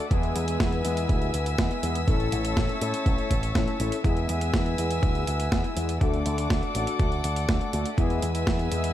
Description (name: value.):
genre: italo disco.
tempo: 122 BPM.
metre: 4/4.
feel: straight.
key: E mixolydian.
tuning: A4 = 439 Hz.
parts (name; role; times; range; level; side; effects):
warm studio string section; sustained chords; 0.0-8.9 s; A4 to E6; -31 LUFS; left 2 dB; none.
analog synth brass; stabs; 0.0-8.9 s; G#3 to A4; -31 LUFS; left 3 dB; chorus, ping-pong delay.
picked electric bass with an envelope filter; bass; 0.1-8.9 s; A1 to A2; -28 LUFS; equal; none.
clean 12-bit digital drum machine; drums; 0.1-8.9 s; hi-hat, snare drum; -32 LUFS; right 1 dB; none.
electronic kick drum; drums; 0.1-8.6 s; none; -26 LUFS; equal; overdrive.
room: light reverb.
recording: dark, warm production.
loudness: -23 LUFS.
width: side -12 dB against mid.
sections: 0.0-8.9 A section.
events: none.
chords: 0.1 E; 2.1 A; 4.0 E; 6.0 D; 8.0 E.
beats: | 0.11 0.60 1.09 1.59 | 2.08 2.57 3.06 3.55 | 4.04 4.54 5.03 5.52 | 6.01 6.50 7.00 7.49 | 7.98 8.47.